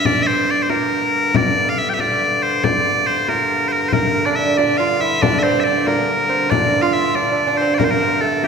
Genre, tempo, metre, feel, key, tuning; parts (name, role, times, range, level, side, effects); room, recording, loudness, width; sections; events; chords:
medieval dance; 93 BPM (dotted quarters); 6/8; straight; G dorian; A4 = 436 Hz
loud bright bagpipes; melody; 0.0-8.5 s; G4 to G5; -18 LUFS; left 1 dB
hand-pumped harmonium; drone; 0.0-8.5 s; G2 to D3; -24 LUFS; right 1 dB
frame drum; percussion; 0.1-8.5 s; -22 LUFS; left 3 dB
lute; second line; 3.9-8.5 s; A3 to F4; -19 LUFS; right 4 dB
wet concert hall reverb, RT60 2.3 s; recorded in a church or concert hall; -15 LUFS; side -6 dB against mid
0.0-8.5 A section